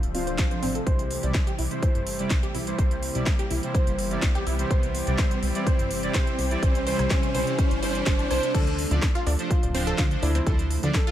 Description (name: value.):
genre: progressive house.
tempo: 125 BPM.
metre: 4/4.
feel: straight.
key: unclear.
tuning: A4 = 440 Hz.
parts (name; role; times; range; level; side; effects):
dark baby grand piano; melody; 0.0-11.1 s; E4 to C5; -33 LUFS; equal; sidechain pumping, digital delay.
lush unison pad; sustained chords; 0.0-11.1 s; C3 to E5; -35 LUFS; equal; chorus, sidechain pumping.
plucky analog bass; bass; 0.0-10.9 s; D1 to D2; -28 LUFS; equal; sidechain pumping.
house drum kit; drums; 0.0-11.1 s; crash cymbal, hi-hat, rim click, snare drum; -32 LUFS; equal; sidechain pumping on hats, high-pass filter on hats, high-pass filter on snare, sidechain pumping on cymbals, high-pass filter on cymbals.
riser; sound effects; 0.0-8.5 s; none; -34 LUFS; equal; none.
wide unison pluck; arpeggios; 0.1-11.1 s; C4 to A5; -35 LUFS; equal; cassette tape, sidechain pumping, digital delay.
soft supersaw; stabs; 0.1-10.9 s; C3 to D5; -31 LUFS; right 2 dB; sidechain pumping, digital delay.
electronic kick drum; drums; 0.4-11.0 s; none; -24 LUFS; equal; none.
room: light reverb, digital ambience.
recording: none.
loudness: -22 LUFS.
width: side -12 dB against mid.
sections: 0.0-8.5 A section; 8.5-11.1 B section.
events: build-up 0.0-8.5; riser 0.0-8.5; filter sweep on supersaw synth 0.0-8.5; drop 8.5-11.1.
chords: 0.0 Dm7; 0.9 C; 8.5 Dm7.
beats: 0.39 | 0.87 1.35 1.83 2.31 | 2.79 3.27 3.75 4.23 | 4.71 5.19 5.67 6.15 | 6.63 7.11 7.59 8.07 | 8.55 9.03 9.51 9.99 | 10.47 10.95.